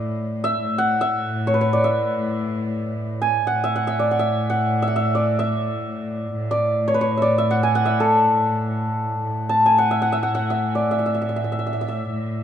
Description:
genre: Persian modal ensemble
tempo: free time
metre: none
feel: none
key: unclear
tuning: A4 = 440 Hz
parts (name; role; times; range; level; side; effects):
- santur; melody; 0.0-12.4 s; A4 to A5; -20 LUFS; equal; plate reverb
- rich chamber cello section; drone; 0.0-12.4 s; A2; -24 LUFS; equal; none
room: moderate small room reverb, RT60 0.5 s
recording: dark, warm production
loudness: -19 LUFS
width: side -9 dB against mid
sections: 0.0-9.2 A section; 9.2-12.4 A section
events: none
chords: none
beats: free time

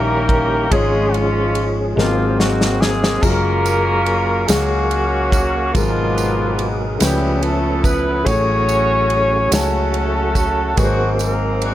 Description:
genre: slow gospel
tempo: 48 BPM (dotted quarters)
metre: 6/8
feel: straight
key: unclear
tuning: A4 = 440 Hz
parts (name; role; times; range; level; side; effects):
- mellow horn section; melody; 0.0-11.7 s; F3 to Eb5; -19 LUFS; equal; none
- warm concert grand piano; accompaniment; 0.0-11.7 s; Ab2 to Ab5; -22 LUFS; left 3 dB; none
- tonewheel organ; sustained chords; 0.0-11.7 s; Cb3 to F5; -24 LUFS; right 2 dB; slow rotary speaker, chorus vibrato
- hollow-body short-scale fingered electric bass; bass; 0.0-11.7 s; Gb1 to Db2; -21 LUFS; equal; none
- natural country drum kit; drums; 0.3-11.7 s; kick drum, ride cymbal, snare drum, splash cymbal; -22 LUFS; equal; none
- tambourine; percussion; 3.2-11.6 s; none; -29 LUFS; right 9 dB; none
room: light reverb, studio ambience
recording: none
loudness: -14 LUFS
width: side -13 dB against mid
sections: 0.0-11.7 A section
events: drum fill 2.0-3.2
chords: 0.0 Eb7b9; 0.7 Db/Ab; 2.0 Ab9; 3.2 Gbmaj9; 5.7 Abm9; 7.0 Db7alt; 8.3 Gbmadd9/A; 10.8 Ab9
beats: | 0.72 1.97 | 3.23 4.49 | 5.75 7.00 | 8.26 9.52 | 10.78

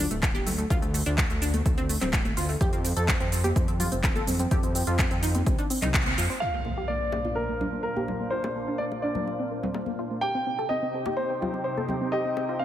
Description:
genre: progressive house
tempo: 126 BPM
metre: 4/4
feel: straight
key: Bb major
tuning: A4 = 440 Hz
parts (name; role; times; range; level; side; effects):
- wide unison pluck; arpeggios; 0.0-12.6 s; A3 to A4; -31 LUFS; equal; cassette tape, sidechain pumping, tape echo
- dark detuned saw bass; bass; 0.0-6.3 s; D1 to F2; -28 LUFS; equal; sidechain pumping
- house drum kit; drums; 0.0-12.6 s; crash cymbal, handclaps, hi-hat, shaker; -30 LUFS; equal; low-pass filter on hats, studio reverb, low-pass filter on snare, low-pass filter on perc, low-pass filter on cymbals
- electronic kick drum; drums; 0.2-6.0 s; none; -27 LUFS; equal; overdrive, studio reverb
- congas and bongos; percussion; 0.3-12.5 s; none; -36 LUFS; left 2 dB; sidechain pumping on perc
- warm concert grand piano; melody; 6.4-12.6 s; Bb4 to G5; -29 LUFS; left 1 dB; sidechain pumping, tape echo
- supersaw pad; sustained chords; 6.9-12.6 s; Bb2 to G5; -33 LUFS; right 1 dB; sidechain pumping, low-pass filter
- impact; sound effects; 6.4-8.3 s; none; -36 LUFS; equal; none
room: light reverb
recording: none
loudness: -24 LUFS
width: side -11 dB against mid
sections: 0.0-6.4 A section; 6.4-12.6 B section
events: band accent 5.9; impact 6.4-8.3; filter sweep on drum 6.4-12.6; filter sweep on synth pluck 6.4-12.6; filter sweep on supersaw synth 6.4-12.6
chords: 0.0 D5; 2.6 F5; 6.4 Bbadd9; 10.2 Cm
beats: 0.23 | 0.70 1.18 1.66 2.13 | 2.61 3.08 3.56 4.04 | 4.51 4.99 5.47 5.94 | 6.42 6.89 7.37 7.85 | 8.32 8.80 9.28 9.75 | 10.23 10.70 11.18 11.66 | 12.13 12.61

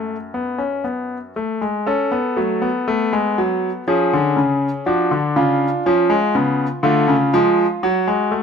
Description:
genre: classical, baroque-style 3-part fugue for grand piano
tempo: 60 BPM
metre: 4/4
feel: straight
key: F# minor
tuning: A4 = 442 Hz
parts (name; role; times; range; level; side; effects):
- bright concert grand piano; solo; 0.0-8.4 s; F#2 to A4; -16 LUFS; left 1 dB; none
room: light reverb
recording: close, detailed microphones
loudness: -16 LUFS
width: side -6 dB against mid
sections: 0.0-1.9 A section; 1.9-8.4 B section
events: none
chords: 0.0 F#m; 3.9 C#; 5.9 C#7; 7.8 F#m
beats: 0.86 | 1.88 2.88 3.88 4.87 | 5.86 6.84 7.83

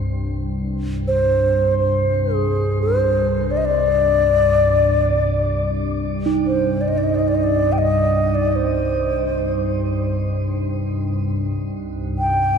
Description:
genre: world meditative, free-time meditation music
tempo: free time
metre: none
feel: none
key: C hirajoshi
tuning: A4 = 441 Hz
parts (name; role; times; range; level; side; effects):
- glassy FM pad; drone; 0.0-12.6 s; C2 to G2; -21 LUFS; equal; ensemble chorus, built-in reverb
- low xiao; melody; 1.1-12.6 s; Ab4 to G5; -19 LUFS; left 1 dB; shimmer reverb, diffuse ambient delay
- bronze singing bowl; texture; 6.3-12.6 s; Eb4; -25 LUFS; right 7 dB; shimmer reverb
room: wet cathedral reverb, RT60 4.3 s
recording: dark, warm production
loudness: -17 LUFS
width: side -6 dB against mid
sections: 0.0-12.6 A section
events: none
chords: none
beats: free time

